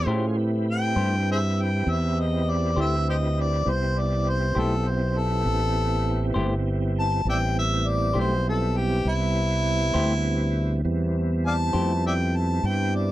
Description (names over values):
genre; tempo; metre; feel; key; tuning
slow blues; 67 BPM (dotted quarters); 12/8; straight; A minor; A4 = 439 Hz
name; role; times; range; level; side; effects
mellow harmonica; melody; 0.0-13.1 s; E4 to A5; -27 LUFS; left 1 dB; none
tonewheel organ; sustained chords; 0.0-13.1 s; G3 to C5; -29 LUFS; right 3 dB; slow rotary speaker, chorus vibrato
fretless electric bass; bass; 0.0-13.1 s; G1 to A2; -24 LUFS; equal; none
semi-hollow electric guitar; accompaniment; 0.1-11.9 s; A3 to C5; -27 LUFS; left 2 dB; harmonic tremolo
room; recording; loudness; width
little or no reverb; dry, close 1970s-style studio recording; -22 LUFS; side -15 dB against mid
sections
0.1-13.1 A section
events
harmonica solo 0.1-13.1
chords
0.1 Am7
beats
| 0.07 0.97 1.87 2.77 | 3.67 4.56 5.46 6.36 | 7.26 8.15 9.05 9.95 | 10.84 11.74 12.63